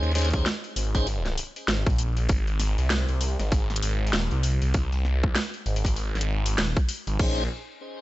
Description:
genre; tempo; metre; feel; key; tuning
glitch hop; 98 BPM; 4/4; swing 60% on 16ths; unclear; A4 = 440 Hz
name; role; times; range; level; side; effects
tonewheel organ; stabs; 0.0-1.1, 7.2-7.4 s; Db4 to C5; -31 LUFS; equal; slow rotary speaker, sidechain pumping, tape echo
phased detuned saw bass; bass; 0.0-7.5 s; Eb1 to Eb2; -25 LUFS; equal; phaser
drum and bass drum kit; drums; 0.0-7.3 s; crash cymbal, hi-hat, snare drum; -30 LUFS; equal; overdrive
electronic kick drum; drums; 0.3-7.3 s; none; -24 LUFS; equal; overdrive
room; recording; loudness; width
digital ambience; nothing above 7.9 kHz; -23 LUFS; side -17 dB against mid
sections
0.0-7.2 A section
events
none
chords
0.0 Bbm11; 2.3 Ab; 7.2 Bbm11

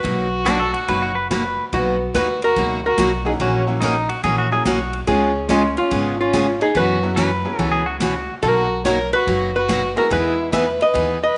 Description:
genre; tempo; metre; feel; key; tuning
country, western swing; 143 BPM; 4/4; swing 66% on 8ths; B major; A4 = 440 Hz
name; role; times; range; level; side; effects
archtop guitar, miked and amplified; melody; 0.0-11.4 s; C#4 to E5; -23 LUFS; equal; none
dark fiddle; second line; 0.0-11.4 s; G#3 to B4; -26 LUFS; equal; none
picked steel-string acoustic guitar; accompaniment; 0.0-11.2 s; B2 to A#4; -25 LUFS; equal; none
upright bass; bass; 0.0-11.3 s; F#1 to F#2; -29 LUFS; equal; none
swinging big-band drum kit; drums; 0.0-11.1 s; hi-hat, kick drum, ride cymbal, snare drum; -32 LUFS; equal; none
pedal steel guitar; second line; 0.5-8.3 s; D4 to B4; -24 LUFS; equal; none
tack piano; accompaniment; 3.2-10.5 s; F#3 to D#5; -31 LUFS; equal; none
room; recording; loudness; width
light reverb, studio reverb; nothing above 10.7 kHz; -19 LUFS; mono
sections
0.0-11.4 A section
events
none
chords
0.0 Bmaj7; 3.4 F#7/A#; 5.1 C#7; 6.8 F#7sus4; 8.4 Bmaj7; 10.1 Emaj7

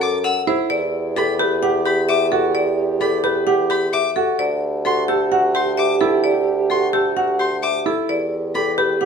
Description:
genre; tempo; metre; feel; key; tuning
classical, minimalist pattern music; 130 BPM; 4/4; straight; E minor; A4 = 440 Hz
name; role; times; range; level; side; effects
marimba with hard mallets; melody; 0.0-9.1 s; G4 to F#5; -20 LUFS; left 6 dB; none
warm French horn; second line; 0.0-9.1 s; G4 to A4; -24 LUFS; right 7 dB; none
clear baby grand piano; arpeggios; 0.0-9.1 s; E4 to B4; -22 LUFS; right 6 dB; none
warm violin; arpeggios; 0.0-8.7 s; B5 to E6; -25 LUFS; left 1 dB; none
mellow bassoon; bass; 0.0-9.1 s; D2 to F#2; -24 LUFS; equal; none
room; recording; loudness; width
wet stone room reverb, RT60 1.0 s; none; -16 LUFS; side -6 dB against mid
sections
0.0-9.1 A section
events
none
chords
0.0 F#m7b5; 0.7 Emadd9; 4.4 D9sus4; 8.1 Em7

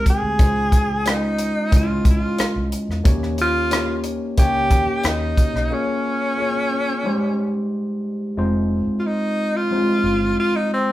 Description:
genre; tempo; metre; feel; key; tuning
lush 1970s-style soul; 90 BPM; 4/4; straight; unclear; A4 = 440 Hz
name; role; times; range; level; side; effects
clear tenor saxophone; melody; 0.0-10.9 s; C4 to Ab4; -22 LUFS; equal; none
tine electric piano; accompaniment; 0.0-10.9 s; G3 to Eb5; -22 LUFS; equal; overdrive
vintage muted fingered electric bass; bass; 0.0-10.3 s; F1 to Fb2; -27 LUFS; equal; none
compact cocktail drum kit; drums; 0.1-5.6 s; hi-hat, kick drum, rim click; -18 LUFS; equal; none
room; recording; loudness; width
moderate large studio reverb, RT60 0.8 s; band playing live in one room; -18 LUFS; side -15 dB against mid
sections
0.0-8.4 A section; 8.4-10.9 B section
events
break 5.7-8.4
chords
0.4 Dbmaj9; 3.1 Eb7; 5.7 Bbm7; 7.0 Abmaj7; 8.4 Fm7

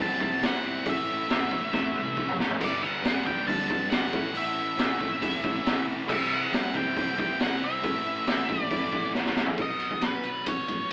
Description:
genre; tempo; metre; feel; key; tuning
quiet-loud alternative rock; 138 BPM; 4/4; straight; unclear; A4 = 440 Hz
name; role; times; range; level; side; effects
octave-fuzz lead guitar; melody; 0.0-10.9 s; B4 to A5; -33 LUFS; equal; distortion
high-gain distorted guitar; riff; 0.0-9.6 s; G2 to E4; -38 LUFS; equal; distortion
sludgy distorted guitar; riff; 0.0-9.6 s; G2 to E4; -40 LUFS; equal; none
thick fuzz guitar; riff; 0.0-9.6 s; G2 to C4; -38 LUFS; equal; none
hollow-body short-scale picked electric bass; bass; 0.0-10.9 s; E1 to A2; -47 LUFS; equal; none
raw garage drum kit; drums; 0.2-10.9 s; crash cymbal, hi-hat, kick drum, ride cymbal, snare drum, splash cymbal, toms; -31 LUFS; equal; none
clean electric guitar; arpeggios; 9.6-10.9 s; B2 to F#4; -43 LUFS; equal; none
room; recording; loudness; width
light reverb; band playing live in one room, AM radio sound; -28 LUFS; mono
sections
0.0-9.6 A section; 9.6-10.9 B section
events
drum fill 1.7-2.6, 9.1-9.6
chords
0.0 C; 0.9 A; 2.6 G; 4.1 A; 6.1 C; 7.8 A; 9.6 B

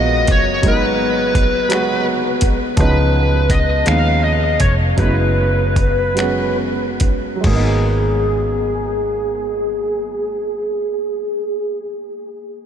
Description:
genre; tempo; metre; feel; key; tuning
slow six-eight R&B; 45-56 BPM (dotted quarters); 6/8; straight; G# minor; A4 = 440 Hz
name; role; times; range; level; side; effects
high-gain lead guitar; melody; 0.0-11.9 s; G#4 to E#5; -19 LUFS; equal; distortion, low-pass filter, analog delay
warm baby grand piano; accompaniment; 0.0-12.7 s; E#3 to F#4; -21 LUFS; right 2 dB; low-pass filter
vintage muted fingered electric bass; bass; 0.0-11.9 s; E#1 to D#2; -19 LUFS; equal; none
dusty soul sampler-style drum kit; drums; 0.3-7.7 s; crash cymbal, finger snaps, hi-hat, kick drum; -20 LUFS; equal; overdrive
room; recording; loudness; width
moderate huge ambient reverb, RT60 7.3 s; dreamy mix soaked in reverb; -14 LUFS; side -8 dB against mid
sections
0.0-7.4 A section; 7.4-12.7 B section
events
filter sweep 0.0-7.4; slowing down 2.8-7.4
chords
0.0 G#m9; 2.8 C#9; 5.0 F#7sus4; 7.4 G#m9

